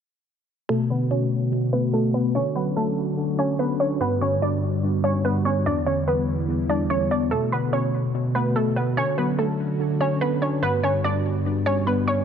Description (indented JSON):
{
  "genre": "hip hop",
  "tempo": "145 BPM",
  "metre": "4/4",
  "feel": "half-time",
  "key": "B minor",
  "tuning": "A4 = 441 Hz",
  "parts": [
    { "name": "warbly dusty pluck", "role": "melody", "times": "0.7-12.2 s", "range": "A3 to D5", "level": "-24 LUFS", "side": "right 1 dB", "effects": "chorus, low-pass filter" },
    { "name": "mellow tine electric piano", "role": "accompaniment", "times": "0.7-12.2 s", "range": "E2 to D4", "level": "-24 LUFS", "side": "equal", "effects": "slow stereo tremolo, low-pass filter" },
    { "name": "airy breathy pad", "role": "sustained chords", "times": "0.7-12.2 s", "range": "D3 to F#4", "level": "-31 LUFS", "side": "equal", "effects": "chorus, low-pass filter" }
  ],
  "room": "light reverb",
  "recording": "none",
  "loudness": "-20 LUFS",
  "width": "side -8 dB against mid",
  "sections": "0.7-12.2 A section",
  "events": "filter sweep 0.7-12.2",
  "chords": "0.7 Bm7; 2.4 Dmaj7; 4.0 Gmaj7; 5.7 Em7; 7.3 Bm7; 9.0 Dmaj7; 10.6 Gmaj7",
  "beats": "| 0.70 1.11 1.52 1.94 | 2.35 2.77 3.18 3.59 | 4.01 4.42 4.83 5.25 | 5.66 6.08 6.49 6.90 | 7.32 7.73 8.14 8.56 | 8.97 9.39 9.80 10.21 | 10.63 11.04 11.46 11.87"
}